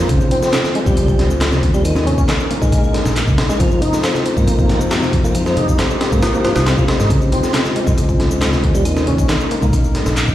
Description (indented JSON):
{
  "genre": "breakbeat, breaks",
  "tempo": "137 BPM",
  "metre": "4/4",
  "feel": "straight",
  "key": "F minor",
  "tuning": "A4 = 440 Hz",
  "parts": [
    { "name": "dark analog pad", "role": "sustained chords", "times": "0.0-10.3 s", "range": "F3 to C5", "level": "-22 LUFS", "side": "left 1 dB", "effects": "chorus, sidechain pumping" },
    { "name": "tonewheel organ", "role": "riff", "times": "0.0-9.7 s", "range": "Db3 to Eb4", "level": "-21 LUFS", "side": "equal", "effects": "overdrive, chorus vibrato, slow rotary speaker, tape echo" },
    { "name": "fingered electric bass", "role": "bass", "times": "0.0-10.3 s", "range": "Bb1 to Ab2", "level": "-18 LUFS", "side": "equal", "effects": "none" },
    { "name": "breakbeat sampler-style drum kit", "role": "drums", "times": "0.1-10.3 s", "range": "hi-hat, kick drum, snare drum", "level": "-17 LUFS", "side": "equal", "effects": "none" },
    { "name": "electronic shaker and handclaps", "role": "drums", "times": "0.1-10.3 s", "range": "none", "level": "-26 LUFS", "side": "equal", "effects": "none" },
    { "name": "congas", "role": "percussion", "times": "0.1-10.3 s", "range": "none", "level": "-26 LUFS", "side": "right 1 dB", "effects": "none" }
  ],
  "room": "light reverb",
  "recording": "played on a big sound system in a bare room, large studio reverb",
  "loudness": "-13 LUFS",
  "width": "side -13 dB against mid",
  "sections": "0.0-10.3 A section",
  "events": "none",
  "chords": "0.1 Dbmaj7; 1.8 Eb7sus4; 3.6 Fm7; 7.1 Dbmaj7; 8.9 Eb7sus4"
}